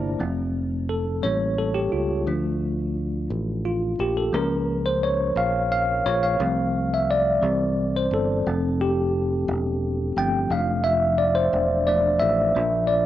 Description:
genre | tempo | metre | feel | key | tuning
slow gospel | 58 BPM (dotted quarters) | 6/8 | straight | unclear | A4 = 440 Hz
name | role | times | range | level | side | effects
bell-like tine electric piano | accompaniment | 0.0-13.1 s | C3 to A5 | -22 LUFS | equal | medium stereo tremolo
fingered electric bass | bass | 0.0-13.1 s | E1 to D2 | -27 LUFS | equal | none
room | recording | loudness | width
moderate spring reverb, RT60 2.6 s | home recording on cassette | -21 LUFS | side -12 dB against mid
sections
0.2-13.1 A section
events
tine electric piano solo 0.2-13.1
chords
0.2 F; 1.2 A7b9; 2.3 Dm; 4.3 Bbm/Db; 6.4 F/C; 7.4 C; 8.5 F; 10.5 Dm/F

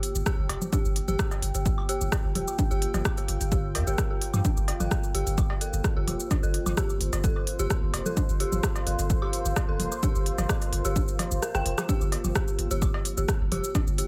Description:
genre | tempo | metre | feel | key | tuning
minimal techno | 129 BPM | 4/4 | straight | G minor | A4 = 440 Hz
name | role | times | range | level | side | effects
minimal click drum kit | drums | 0.0-14.1 s | hi-hat, rim click, shaker | -35 LUFS | equal | small room ambience
deep dark ambient pad | texture | 0.0-14.1 s | Bb3 to G5 | -38 LUFS | equal | chorus, built-in reverb, sidechain pumping
punchy sub bass | bass | 0.2-14.0 s | F1 to G2 | -32 LUFS | equal | sidechain pumping
dark detuned synth bell | riff | 0.3-14.0 s | G4 to G5 | -37 LUFS | equal | chorus, phaser, sidechain pumping, delay
electronic kick drum | drums | 0.3-13.8 s | none | -30 LUFS | equal | small room ambience
cowbell, woodblock, congas and bongos | percussion | 0.5-13.8 s | none | -37 LUFS | equal | overdrive, small room ambience, delay
room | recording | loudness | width
digital ambience | none | -27 LUFS | mono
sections
0.0-14.1 A section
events
kick drops out 11.4-11.9; drum fill 11.4-11.9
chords
0.0 Gm7

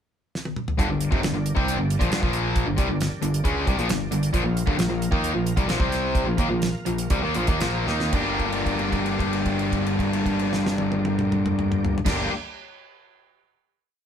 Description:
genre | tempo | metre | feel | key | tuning
classic rock | 113-136 BPM | 4/4 | straight | G minor | A4 = 440 Hz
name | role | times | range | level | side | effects
damped 70s drum kit | drums | 0.4-12.2 s | crash cymbal, hi-hat, kick drum, snare drum, toms | -27 LUFS | right 1 dB | none
tonewheel organ | sustained chords | 0.8-12.3 s | Bb3 to G5 | -36 LUFS | right 3 dB | none
distorted electric guitar | riff | 0.8-12.3 s | F2 to G4 | -24 LUFS | left 4 dB | overdrive
overdriven electric guitar | riff | 0.8-12.3 s | F2 to Bb4 | -29 LUFS | right 10 dB | none
picked electric bass | bass | 0.8-12.3 s | F1 to Eb2 | -30 LUFS | equal | none
room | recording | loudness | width
moderate studio reverb, RT60 0.7 s | band playing live in one room | -21 LUFS | side -8 dB against mid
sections
0.0-0.8 pickup bar; 0.8-8.1 riff; 8.1-12.4 final chord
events
drum fill 0.3-0.8, 7.9; slowing down 4.3-8.1; held note 8.1-12.1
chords
0.0 N.C.; 0.8 Gm; 2.2 Bb5; 2.7 Gm; 4.3 Bb5; 5.8 C5; 6.3 Bb5; 8.1 Gm

